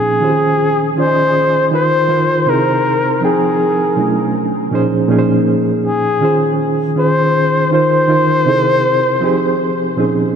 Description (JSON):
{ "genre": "R&B", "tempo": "80 BPM", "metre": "4/4", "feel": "swing 62% on 16ths", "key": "Bb dorian", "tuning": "A4 = 440 Hz", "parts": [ { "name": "breathy flugelhorn", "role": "melody", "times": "0.0-9.9 s", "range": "Ab4 to C5", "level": "-15 LUFS", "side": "left 1 dB", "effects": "analog delay" }, { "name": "reed electric piano", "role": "accompaniment", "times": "0.0-10.4 s", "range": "Bb2 to G5", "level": "-15 LUFS", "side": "right 1 dB", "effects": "overdrive, fast tremolo" } ], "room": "wet huge ambient reverb, RT60 5.1 s", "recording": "dreamy mix soaked in reverb", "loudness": "-12 LUFS", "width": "side -7 dB against mid", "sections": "0.0-10.4 A section", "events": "none", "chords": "0.2 Eb13sus4; 1.7 Bbsus24/Eb; 2.5 C7alt; 3.2 Fm9; 4.0 Bm11; 4.7 Bbm11; 6.2 Eb13sus4; 7.7 Bbsus24/Eb; 8.5 C7alt; 9.2 Fm9", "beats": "0.22 0.97 | 1.72 2.47 3.22 3.97 | 4.72 5.47 6.22 6.97 | 7.72 8.47 9.22 9.97" }